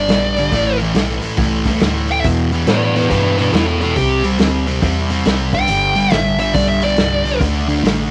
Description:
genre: blues rock power trio and southern rock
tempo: 139 BPM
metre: 4/4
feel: swing 64% on 8ths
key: unclear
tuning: A4 = 440 Hz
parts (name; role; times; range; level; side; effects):
- dark smooth lead guitar; melody; 0.0-7.4 s; D4 to G5; -21 LUFS; equal; overdrive
- sludgy distorted guitar; riff; 0.0-8.1 s; E2 to D4; -20 LUFS; equal; overdrive
- woody FM bass; bass; 0.0-8.1 s; G1 to A2; -23 LUFS; equal; none
- vintage drum kit; drums; 0.1-8.0 s; hi-hat, kick drum, snare drum; -22 LUFS; equal; none
room: studio ambience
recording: none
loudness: -16 LUFS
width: mono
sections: 0.0-8.1 A section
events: none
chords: 0.0 G5; 0.5 Am; 2.2 Em; 4.0 C; 5.5 G; 7.4 D5

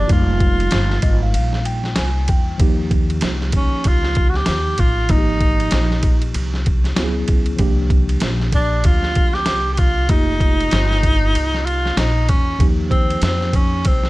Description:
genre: hip hop, jazz-hop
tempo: 96 BPM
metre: 4/4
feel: swing 59% on 16ths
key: unclear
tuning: A4 = 441 Hz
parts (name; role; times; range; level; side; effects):
- breathy tenor saxophone; melody; 0.0-14.1 s; C4 to G4; -21 LUFS; equal; none
- mellow tine electric piano; accompaniment; 0.0-14.1 s; F3 to Ab5; -25 LUFS; right 1 dB; medium stereo tremolo
- upright bass; bass; 0.0-14.1 s; F1 to F2; -20 LUFS; equal; none
- lo-fi sampler-style drum kit; drums; 0.1-14.1 s; hi-hat, kick drum, ride cymbal, snare drum; -18 LUFS; equal; none
room: digital ambience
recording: none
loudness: -15 LUFS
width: side -19 dB against mid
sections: 0.0-14.1 A section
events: tine electric piano fill 0.7-2.6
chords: 0.1 Fm9; 2.6 Eb13; 5.1 Ab6; 7.0 Dbm7; 7.6 Csus2; 10.1 Fsus2; 12.6 Eb13

